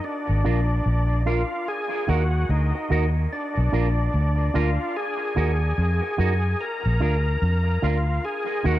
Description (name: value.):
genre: dub reggae.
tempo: 73 BPM.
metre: 4/4.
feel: swing 62% on 16ths.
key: Eb harmonic minor.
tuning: A4 = 439 Hz.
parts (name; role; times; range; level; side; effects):
overdriven tonewheel organ; melody; 0.0-8.8 s; D4 to Bb4; -27 LUFS; left 1 dB; chorus vibrato, dub echo.
vintage muted fingered electric bass; bass; 0.3-8.8 s; Ab1 to Gb2; -21 LUFS; equal; none.
electric guitar with an envelope filter; accompaniment; 0.4-8.8 s; D4 to Bb4; -30 LUFS; right 4 dB; dub echo.
room: light reverb.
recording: echo-heavy mix.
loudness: -21 LUFS.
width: side -14 dB against mid.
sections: 0.0-8.8 A section.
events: none.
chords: 0.0 Bb; 1.7 Ebm; 3.3 Bb; 4.9 Ebm; 6.6 Bb; 8.2 Ebm.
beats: 0.03 0.85 | 1.67 2.49 3.31 4.13 | 4.95 5.77 6.59 7.41 | 8.23.